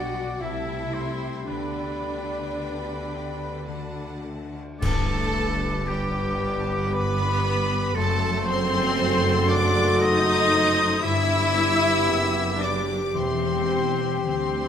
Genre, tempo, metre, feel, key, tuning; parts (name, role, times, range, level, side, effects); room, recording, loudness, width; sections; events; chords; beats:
classical, slow romantic movement for symphony orchestra; 53-59 BPM; 3/4; rubato; G major; A4 = 440 Hz
clear chamber violin section; melody; 0.0-14.7 s; D5 to E6; -32 LUFS; left 4 dB
mellow hollow silver concert flute; second line; 0.0-14.7 s; D5 to D6; -34 LUFS; left 1 dB
warm oboe; second line; 0.0-14.7 s; G4 to E5; -30 LUFS; right 1 dB
warm symphonic violin section; second line; 0.0-14.7 s; G4 to C6; -33 LUFS; left 1 dB
rich studio viola section; accompaniment; 0.0-14.7 s; G3 to F#4; -28 LUFS; left 1 dB
mellow French horn section; sustained chords; 0.0-14.7 s; G3 to G4; -31 LUFS; left 3 dB
concert harp; arpeggios; 0.0-14.7 s; F#2 to D6; -34 LUFS; left 9 dB
clear studio double bass section; bass; 0.0-14.7 s; E1 to D2; -32 LUFS; right 3 dB
rich studio cello section; bass; 0.0-14.7 s; D2 to D3; -31 LUFS; right 2 dB
cymbal swell, clash cymbals and concert bass drum; percussion; 1.5-6.9 s; -32 LUFS; equal
mellow clarinet; second line; 4.8-14.7 s; G4 to B4; -31 LUFS; right 1 dB
timpani; percussion; 4.8-6.4 s; G2; -33 LUFS; left 1 dB
moderate scoring stage reverb, RT60 1.6 s; close, detailed microphones; -21 LUFS; side -8 dB against mid
0.0-4.8 A section; 4.8-14.7 B section
band accent 4.8-5.9
0.4 C6; 1.5 G/D; 3.7 D; 4.8 G; 8.0 F#dim7; 11.0 G; 13.1 C/E
0.42 | 1.49 2.58 3.69 | 4.81 5.87 6.93 | 7.95 8.98 10.01 | 11.03 12.06 13.14 | 14.26